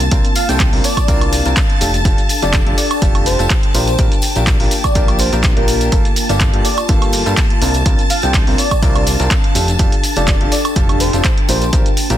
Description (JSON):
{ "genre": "piano house", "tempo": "124 BPM", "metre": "4/4", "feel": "swing 54% on 16ths", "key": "unclear", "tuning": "A4 = 438 Hz", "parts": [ { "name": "string machine, violins", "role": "sustained chords", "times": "0.0-12.2 s", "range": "A5", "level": "-24 LUFS", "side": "equal", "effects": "ensemble chorus, sidechain pumping" }, { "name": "fat analog bass", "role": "bass", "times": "0.0-12.2 s", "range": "F1 to G2", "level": "-18 LUFS", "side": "equal", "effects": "sidechain pumping" }, { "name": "punchy analog drum machine", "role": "drums", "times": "0.0-12.2 s", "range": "handclaps, hi-hat, shaker, woodblock", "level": "-20 LUFS", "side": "right 2 dB", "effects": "none" }, { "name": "tambourine", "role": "percussion", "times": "0.0-12.2 s", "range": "none", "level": "-29 LUFS", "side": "left 6 dB", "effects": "none" }, { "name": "warbly tape-like pad", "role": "texture", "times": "0.0-12.2 s", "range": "Bb3 to A5", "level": "-25 LUFS", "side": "left 1 dB", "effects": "chorus, built-in reverb, sidechain pumping" }, { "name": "clear baby grand piano", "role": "riff", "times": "0.1-12.2 s", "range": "Bb3 to Bb4", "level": "-22 LUFS", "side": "equal", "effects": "sidechain pumping, digital delay" }, { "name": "dusty soul sampler-style drum kit", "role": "drums", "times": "0.1-12.1 s", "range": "hi-hat, snare drum", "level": "-31 LUFS", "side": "equal", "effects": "none" }, { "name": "electronic kick drum", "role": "drums", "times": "0.1-11.8 s", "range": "none", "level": "-15 LUFS", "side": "equal", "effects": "none" }, { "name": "airy dreamy lead", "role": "melody", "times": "0.4-11.7 s", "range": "Bb4 to G5", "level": "-22 LUFS", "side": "equal", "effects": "chorus, cassette tape, digital delay" } ], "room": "digital ambience", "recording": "dense, heavily limited modern master", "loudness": "-12 LUFS", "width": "side -12 dB against mid", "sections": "0.0-12.2 A section", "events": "none", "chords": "0.0 C9sus4; 1.8 F69; 3.7 Bb6; 5.9 Gm9; 7.6 C9sus4; 9.6 F69; 11.5 Bb6" }